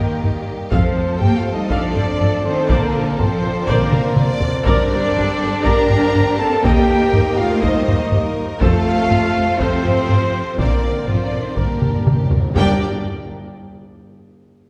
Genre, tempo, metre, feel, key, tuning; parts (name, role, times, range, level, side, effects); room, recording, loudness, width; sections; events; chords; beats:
cinematic, epic orchestral film score; 122 BPM; 4/4; straight; G minor; A4 = 442 Hz
rich symphonic violin section; melody; 0.0-12.8 s; Bb4 to Bb5; -31 LUFS; equal
warm symphonic violin section; second line; 0.0-12.8 s; F4 to G5; -30 LUFS; equal
warm studio viola section; accompaniment; 0.0-12.8 s; C4 to F5; -30 LUFS; equal
mellow French horn section; sustained chords; 0.0-12.8 s; Bb3 to Bb4; -25 LUFS; equal
warm symphonic string section; sustained chords; 0.0-12.8 s; G3 to Eb5; -32 LUFS; equal
warm trombone section; sustained chords; 0.0-12.8 s; C3 to D4; -32 LUFS; equal
dark trumpet; stabs; 0.0-12.8 s; Bb3 to Bb5; -28 LUFS; equal
rich symphonic cello section; bass; 0.0-12.8 s; D3 to D4; -26 LUFS; equal
rich symphonic double bass section; bass; 0.0-12.8 s; G1 to F2; -27 LUFS; equal
taiko ensemble; drums; 0.2-12.7 s; -22 LUFS; equal
timpani; percussion; 11.6-12.8 s; G2; -27 LUFS; equal
wet scoring stage reverb, RT60 2.1 s; heard from further back in the room; -17 LUFS; mono
0.0-12.6 A section; 12.6-14.5 B section
drum fill 3.9-4.7, 11.8-12.6; timpani fill 11.6-12.6
0.0 Eb; 0.7 F; 2.7 Bbadd9; 4.7 Gm; 6.6 Eb; 8.6 F; 10.6 Bbadd9; 11.6 Gm
0.24 | 0.73 1.22 1.72 2.21 | 2.70 3.19 3.69 4.18 | 4.67 5.16 5.66 6.15 | 6.64 7.13 7.63 8.12 | 8.61 9.11 9.60 10.09 | 10.59 11.08 11.57 12.07 | 12.56